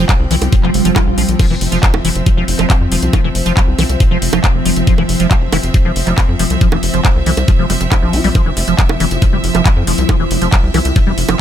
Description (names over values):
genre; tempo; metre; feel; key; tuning
psychedelic trance; 138 BPM; 4/4; straight; unclear; A4 = 440 Hz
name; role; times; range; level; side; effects
evolving wavetable pad; sustained chords; 0.0-11.4 s; F3 to E4; -20 LUFS; left 1 dB; phaser, built-in reverb, sidechain pumping
liquid acid bass; riff; 0.0-11.4 s; E3 to F4; -19 LUFS; moving between left 5 dB and right 7 dB; chorus, auto-pan, sidechain pumping, dub echo
tight sequencer bass; bass; 0.0-11.4 s; F1 to F2; -17 LUFS; equal; none
clear studio string section; texture; 0.0-11.4 s; F3 to G5; -23 LUFS; right 1 dB; sidechain pumping
electronic kick drum; drums; 0.1-11.0 s; none; -12 LUFS; equal; none
techno drum kit; drums; 0.1-11.4 s; bongos, crash cymbal, handclaps, hi-hat; -20 LUFS; right 1 dB; none
swell; sound effects; 0.6-1.4 s; none; -26 LUFS; left 7 dB; none
room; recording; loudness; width
little or no reverb; none; -11 LUFS; side -10 dB against mid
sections
0.0-11.4 A section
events
swell 0.6-1.4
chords
0.0 F5